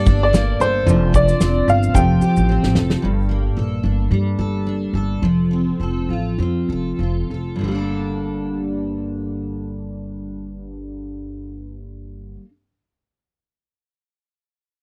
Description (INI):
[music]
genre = acoustic pop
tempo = 94-112 BPM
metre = 4/4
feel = swing 55% on 16ths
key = G minor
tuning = A4 = 437 Hz
[part]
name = warm upright piano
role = melody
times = 0.0-2.7 s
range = C5 to G5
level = -22 LUFS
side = equal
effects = none
[part]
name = picked steel-string acoustic guitar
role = accompaniment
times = 0.0-12.5 s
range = G2 to A4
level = -24 LUFS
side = equal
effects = double-tracked
[part]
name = warm grand piano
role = accompaniment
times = 0.0-3.0 s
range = Bb3 to F5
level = -32 LUFS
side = equal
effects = none
[part]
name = upright bass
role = bass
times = 0.1-12.3 s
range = F1 to G2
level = -24 LUFS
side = equal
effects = none
[part]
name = natural country drum kit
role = drums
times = 0.1-3.0 s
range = kick drum, shaker, snare drum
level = -20 LUFS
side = equal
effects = none
[sound]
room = little or no reverb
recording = dry, close 1970s-style studio recording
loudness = -19 LUFS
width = mono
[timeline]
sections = 0.0-3.0 A section; 3.0-7.6 B section; 7.6-12.7 C section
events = drum fill 2.5-3.0; slowing down 3.0-7.6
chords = 0.0 Gmadd9; 0.9 Dm7/F; 1.9 Fadd9; 3.0 Gmadd9; 5.2 F; 7.6 Gmadd9